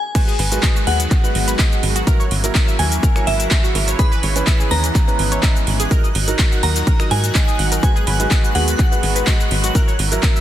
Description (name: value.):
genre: progressive house.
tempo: 125 BPM.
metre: 4/4.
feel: straight.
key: G# minor.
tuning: A4 = 440 Hz.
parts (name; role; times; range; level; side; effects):
glassy synth bell; melody; 0.0-9.4 s; E5 to B5; -25 LUFS; left 1 dB; chorus, phaser, sidechain pumping, ping-pong delay.
supersaw pad; sustained chords; 0.1-10.4 s; A#2 to F#4; -27 LUFS; equal; phaser, sidechain pumping.
analog pluck; arpeggios; 0.1-10.4 s; F#4 to F#6; -28 LUFS; right 1 dB; chorus, sidechain pumping, ping-pong delay.
warm concert grand piano; stabs; 0.1-10.4 s; E3 to E5; -26 LUFS; right 4 dB; sidechain pumping, ping-pong delay.
electronic kick drum; drums; 0.1-10.3 s; none; -16 LUFS; equal; none.
house drum kit; drums; 0.1-10.4 s; crash cymbal, finger snaps, handclaps, hi-hat, shaker; -22 LUFS; right 1 dB; none.
twinkling granular texture; texture; 1.8-10.4 s; F#6; -32 LUFS; equal; built-in reverb, sidechain pumping.
tight sequencer bass; bass; 0.4-10.2 s; G#1 to G#2; -19 LUFS; equal; tube saturation, sidechain pumping, high-pass filter.
room: little or no reverb.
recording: dense, heavily limited modern master.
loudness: -14 LUFS.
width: side -12 dB against mid.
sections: 0.1-10.4 A section.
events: break 0.0; drop 0.1-10.4.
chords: 0.1 G#m7; 2.1 F#7/G#; 4.0 C#m7/G#; 5.9 D#m/G#; 7.8 G#m7; 9.8 F#7.